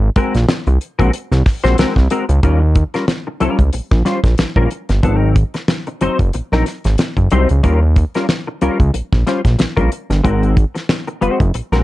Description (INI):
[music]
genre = funk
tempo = 92 BPM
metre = 4/4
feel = swing 56% on 16ths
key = unclear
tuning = A4 = 440 Hz
[part]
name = fat analog bass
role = bass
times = 0.0-11.8 s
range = Gb1 to Eb2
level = -14 LUFS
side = equal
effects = none
[part]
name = semi-hollow electric guitar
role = accompaniment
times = 0.2-11.8 s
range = Gb3 to C5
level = -18 LUFS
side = left 2 dB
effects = ensemble chorus
[part]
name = damped 70s drum kit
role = drums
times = 0.2-11.8 s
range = hi-hat, kick drum, snare drum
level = -17 LUFS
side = equal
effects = vintage 12-bit sampler grit
[sound]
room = light reverb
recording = dark, warm production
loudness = -13 LUFS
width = side -17 dB against mid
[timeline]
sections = 0.0-2.4 A section; 2.4-11.8 B section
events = none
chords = 0.0 Ab9; 2.4 Eb9; 5.0 Ab9; 7.6 Eb9; 10.2 Ab9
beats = 0.48 1.13 1.78 | 2.43 3.08 3.73 4.38 | 5.04 5.69 6.34 6.99 | 7.64 8.29 8.94 9.59 | 10.24 10.89 11.54